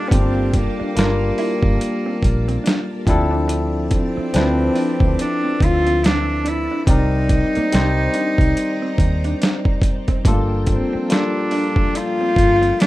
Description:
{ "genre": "R&B, neo-soul", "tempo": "71 BPM", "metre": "4/4", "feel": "swing 60% on 16ths", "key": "unclear", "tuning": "A4 = 440 Hz", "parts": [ { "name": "warm cello", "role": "melody", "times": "0.0-12.9 s", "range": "Bb3 to F4", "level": "-21 LUFS", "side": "equal", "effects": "none" }, { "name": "electric guitar through a small old amp", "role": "second line", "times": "0.0-12.8 s", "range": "Bb3 to E4", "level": "-29 LUFS", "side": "right 2 dB", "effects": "none" }, { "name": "barky tine electric piano", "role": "accompaniment", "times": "0.0-12.9 s", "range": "F3 to D5", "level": "-23 LUFS", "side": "left 2 dB", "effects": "overdrive" }, { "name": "string machine, full ensemble", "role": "sustained chords", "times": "0.0-12.9 s", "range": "F3 to Bb5", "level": "-32 LUFS", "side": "right 1 dB", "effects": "phaser, ensemble chorus" }, { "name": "vintage muted fingered electric bass", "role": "bass", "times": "0.1-12.7 s", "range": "G1 to Eb2", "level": "-20 LUFS", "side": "equal", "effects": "none" }, { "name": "dusty soul sampler-style drum kit", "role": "drums", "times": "0.1-12.9 s", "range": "hi-hat, kick drum, snare drum", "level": "-18 LUFS", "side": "equal", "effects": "overdrive" } ], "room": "light reverb", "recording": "rough home demo mix", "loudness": "-16 LUFS", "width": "side -17 dB against mid", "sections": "0.0-12.9 A section", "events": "none", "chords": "0.0 Gm9; 3.1 Dm9; 6.9 Cm9; 10.3 Gm9", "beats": "| 0.11 0.96 1.80 2.65 | 3.49 4.34 5.18 6.03 | 6.87 7.72 8.56 9.41 | 10.25 11.10 11.94 12.79" }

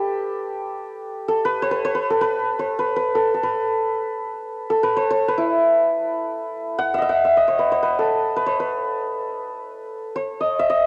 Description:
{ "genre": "Persian modal ensemble", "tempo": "free time", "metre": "none", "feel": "none", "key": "unclear", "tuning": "A4 = 442 Hz", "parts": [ { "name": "santur", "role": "solo", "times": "0.0-10.9 s", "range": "E4 to F#5", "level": "-22 LUFS", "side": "equal", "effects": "cassette tape" } ], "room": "moderate lush hall reverb, RT60 3.0 s", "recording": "home recording on cassette", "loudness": "-22 LUFS", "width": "mono", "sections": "0.0-6.6 A section; 6.6-10.9 A section", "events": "none", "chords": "none", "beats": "free time" }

